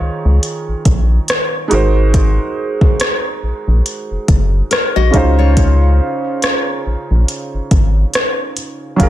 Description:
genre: contemporary R&B.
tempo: 70 BPM.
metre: 4/4.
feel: swing 58% on 16ths.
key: Db major.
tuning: A4 = 444 Hz.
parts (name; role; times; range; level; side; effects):
felt-muted upright piano; accompaniment; 0.0-9.1 s; Db3 to Db5; -20 LUFS; right 3 dB; none.
rubbery square bass; bass; 0.0-9.1 s; Gb1 to Db2; -12 LUFS; equal; none.
smooth R&B drum kit; drums; 0.4-9.1 s; hi-hat, kick drum, rim click; -15 LUFS; equal; none.
nylon-string guitar; arpeggios; 4.7-6.6 s; F4 to Eb5; -21 LUFS; left 10 dB; tape echo.
room: digital ambience.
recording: none.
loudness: -12 LUFS.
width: side -13 dB against mid.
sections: 0.0-9.1 A section.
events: none.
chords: 0.0 Eb9sus4; 1.7 Ab9; 5.1 Dbmaj9.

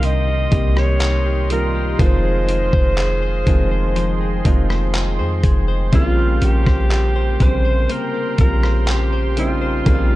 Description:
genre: contemporary R&B.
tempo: 61 BPM.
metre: 4/4.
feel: straight.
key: Bb dorian.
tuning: A4 = 440 Hz.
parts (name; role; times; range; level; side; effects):
breathy alto saxophone; melody; 0.0-10.2 s; F4 to Eb5; -24 LUFS; right 1 dB; none.
warm concert grand piano; accompaniment; 0.0-10.2 s; C3 to G4; -24 LUFS; right 2 dB; none.
warm analog pad; sustained chords; 0.0-10.2 s; Ab4 to C6; -30 LUFS; right 3 dB; chorus, sidechain pumping.
direct-recorded clean electric guitar; arpeggios; 0.0-10.2 s; C3 to C5; -27 LUFS; left 8 dB; vibrato effect.
warm 808-style bass; bass; 0.0-10.2 s; F1 to F2; -18 LUFS; equal; none.
dusty soul sampler-style drum kit; drums; 0.0-10.1 s; handclaps, hi-hat, kick drum, rim click; -18 LUFS; equal; none.
room: little or no reverb.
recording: dark, warm production.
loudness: -15 LUFS.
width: side -17 dB against mid.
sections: 0.0-10.2 A section.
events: none.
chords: 0.0 Cm7; 2.0 Fm7; 5.9 Bbm69.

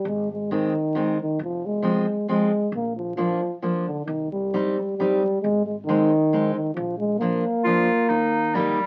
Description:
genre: alpine folk, alpine dance band.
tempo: 134 BPM.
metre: 3/4.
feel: swing 54% on 8ths, rubato.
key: unclear.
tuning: A4 = 440 Hz.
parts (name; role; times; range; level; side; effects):
dark euphonium; melody; 0.0-8.9 s; D3 to Bb3; -25 LUFS; equal; none.
upright bass; bass; 0.0-8.7 s; F1 to Eb2; -42 LUFS; equal; none.
fingerpicked steel-string acoustic guitar; accompaniment; 0.5-8.8 s; Eb3 to Eb4; -27 LUFS; equal; none.
clear clarinet; second line; 7.6-8.9 s; G3 to F4; -25 LUFS; equal; none.
room: moderate small room reverb, RT60 0.6 s.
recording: very old 78 rpm record, vinyl crackle.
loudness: -23 LUFS.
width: mono.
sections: 0.0-8.9 A section.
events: none.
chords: 0.1 Ab; 1.4 Fm; 2.7 Bb; 4.1 Cm; 5.4 Ab; 6.8 Bb; 8.1 Eb.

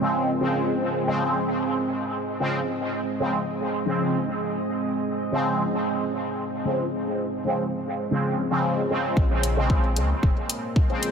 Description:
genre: dub techno.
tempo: 113 BPM.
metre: 4/4.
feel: straight.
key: Bb minor.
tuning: A4 = 441 Hz.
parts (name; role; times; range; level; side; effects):
deep dark ambient pad; sustained chords; 0.0-11.1 s; Ab3 to Eb5; -28 LUFS; right 2 dB; chorus, built-in reverb, sidechain pumping.
resonant sweep polysynth; stabs; 0.0-11.1 s; Db3 to C4; -25 LUFS; equal; chorus, phaser, sidechain pumping, dub echo.
soft dub sub bass; bass; 9.2-10.3 s; F1 to Db2; -25 LUFS; equal; tube saturation, sidechain pumping.
electronic kick drum; drums; 9.2-10.9 s; none; -21 LUFS; equal; small room reverb.
electronic hi-hat; drums; 9.4-11.1 s; none; -27 LUFS; left 2 dB; small room reverb.
room: moderate huge ambient reverb, RT60 4.8 s.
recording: none.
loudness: -22 LUFS.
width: side -6 dB against mid.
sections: 0.0-9.2 A section; 9.2-11.1 B section.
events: filter sweep on analog polysynth 9.2-11.1.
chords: 0.0 Bbm9.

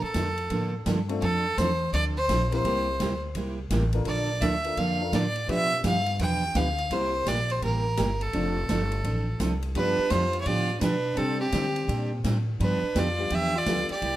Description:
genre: country, western swing.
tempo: 169 BPM.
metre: 4/4.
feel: swing 64% on 8ths.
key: unclear.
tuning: A4 = 445 Hz.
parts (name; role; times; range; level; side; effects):
clear fiddle; melody; 0.0-14.2 s; G4 to G5; -28 LUFS; right 1 dB; none.
picked steel-string acoustic guitar; accompaniment; 0.0-14.2 s; B2 to B4; -30 LUFS; right 2 dB; none.
upright bass; bass; 0.0-14.2 s; F1 to D3; -29 LUFS; equal; none.
swinging big-band drum kit; drums; 0.1-14.1 s; hi-hat, kick drum, ride cymbal, snare drum; -36 LUFS; equal; none.
warm upright piano; accompaniment; 1.1-13.9 s; G3 to C5; -36 LUFS; left 4 dB; none.
clear fiddle; second line; 9.8-14.2 s; C4 to G4; -33 LUFS; equal; none.
room: light reverb.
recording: none.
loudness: -24 LUFS.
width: side -14 dB against mid.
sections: 0.0-14.2 A section.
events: none.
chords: 0.0 Bbmaj7; 1.2 F6; 2.6 C7; 4.1 Bbmaj7; 5.5 G7; 6.9 C7; 8.3 F6; 9.8 G7; 11.2 Csus2; 12.6 G7.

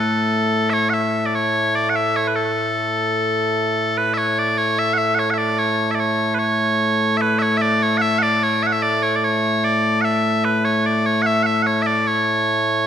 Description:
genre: scottish traditional, Scottish pipe music.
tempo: 74 BPM.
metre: 2/4.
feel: straight.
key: A major.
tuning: A4 = 439 Hz.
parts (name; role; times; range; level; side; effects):
loud bright bagpipes; solo; 0.0-12.9 s; A2 to F#5; -16 LUFS; equal; none.
room: moderate concert hall reverb, RT60 1.9 s.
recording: minimal, uncompressed stereo recording.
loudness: -16 LUFS.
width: side -9 dB against mid.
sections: 0.0-4.0 A section; 4.0-12.9 B section.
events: none.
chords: none.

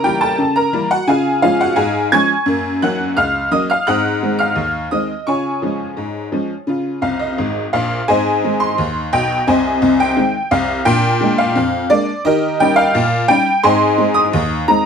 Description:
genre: ragtime piano.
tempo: 86 BPM.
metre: 2/4.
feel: straight.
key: Db major, Ab major from 8.1 s.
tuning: A4 = 440 Hz.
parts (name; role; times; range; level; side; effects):
tack piano; solo; 0.0-14.9 s; Ab1 to Ab6; -14 LUFS; equal; none.
room: moderate small room reverb, RT60 0.5 s.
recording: none.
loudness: -14 LUFS.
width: side -6 dB against mid.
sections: 0.0-8.1 A section; 8.1-14.9 B section.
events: honky-tonk piano fill 7.0-8.1.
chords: 0.0 Dbdim7; 1.1 Db; 2.5 Gb; 3.9 Ab7; 5.3 Db; 8.1 Ab; 9.5 Ab/C; 10.9 Bb7; 12.2 Eb7; 13.6 Ab.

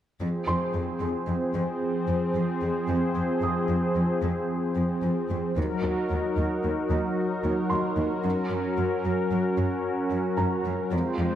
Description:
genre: cinematic, hybrid orchestral and electronic film score.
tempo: 112 BPM.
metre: 5/4.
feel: straight.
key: F phrygian.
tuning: A4 = 438 Hz.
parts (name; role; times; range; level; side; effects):
brassy analog pad; sustained chords; 0.2-11.4 s; F3 to C5; -26 LUFS; equal; chorus.
clear symphonic cello section; bass; 0.2-11.3 s; Eb2 to Gb2; -29 LUFS; equal; none.
felt-muted upright piano; texture; 0.5-11.4 s; Bb4 to Eb6; -34 LUFS; right 3 dB; digital delay.
room: moderate scoring stage reverb, RT60 1.6 s.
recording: none.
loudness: -24 LUFS.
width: side -11 dB against mid.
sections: 0.2-11.4 A section.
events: build-up 0.2-11.4.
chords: 0.2 Fm; 5.6 Ebm; 8.2 Gb.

